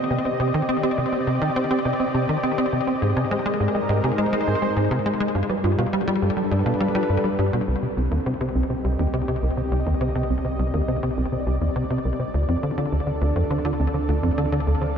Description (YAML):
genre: ambient, sequencer-driven space music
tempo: 103 BPM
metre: 4/4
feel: straight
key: G phrygian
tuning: A4 = 440 Hz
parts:
  - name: lush unison pad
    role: sustained chords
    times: 0.0-15.0 s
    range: G3 to F5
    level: -26 LUFS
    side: equal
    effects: chorus
  - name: soft round pluck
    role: arpeggios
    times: 0.0-14.9 s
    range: C4 to Ab5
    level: -31 LUFS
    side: moving between left 4 dB and right 6 dB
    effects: chorus, auto-pan, ping-pong delay
  - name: tight sequencer bass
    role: riff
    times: 0.0-14.9 s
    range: C2 to C4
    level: -22 LUFS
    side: equal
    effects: wide subtle chorus, ping-pong delay
  - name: warm sub bass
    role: bass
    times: 7.7-15.0 s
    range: C2 to D2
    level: -30 LUFS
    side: equal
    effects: none
room: wet huge ambient reverb, RT60 7.5 s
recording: dark, warm production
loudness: -20 LUFS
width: side -7 dB against mid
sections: 0.0-7.7 A section; 7.7-15.0 B section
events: none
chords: 0.0 Cm; 3.0 Abadd9; 5.3 G7; 7.7 Cm7; 12.3 Dm7